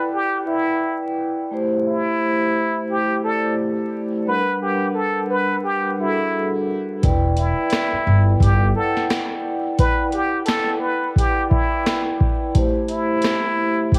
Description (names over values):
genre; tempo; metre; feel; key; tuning
hip hop, boom-bap hip-hop; 87 BPM; 4/4; swing 60% on 16ths; E minor; A4 = 440 Hz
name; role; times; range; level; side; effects
trumpet with plunger mute; melody; 0.0-14.0 s; E4 to B4; -25 LUFS; equal; high-pass filter, low-pass filter, cassette tape, analog delay
vibraphone with soft mallets; accompaniment; 0.0-14.0 s; G3 to G5; -25 LUFS; equal; cassette tape, high-pass filter, low-pass filter
upright bass; bass; 7.0-8.7 s; E1 to G1; -19 LUFS; equal; none
booming analog drum machine; drums; 7.0-14.0 s; hi-hat, kick drum, rim click, snare drum; -23 LUFS; equal; none
room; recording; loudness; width
light reverb; home recording on cassette, vinyl crackle; -20 LUFS; mono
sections
0.0-14.0 A section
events
none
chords
0.0 Em7; 1.5 Am7; 4.3 Gmaj7; 7.0 Em7; 12.5 Am7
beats
0.13 0.82 | 1.51 2.20 2.89 3.58 | 4.27 4.96 5.65 6.34 | 7.03 7.72 8.41 9.10 | 9.79 10.48 11.17 11.86 | 12.55 13.24 13.93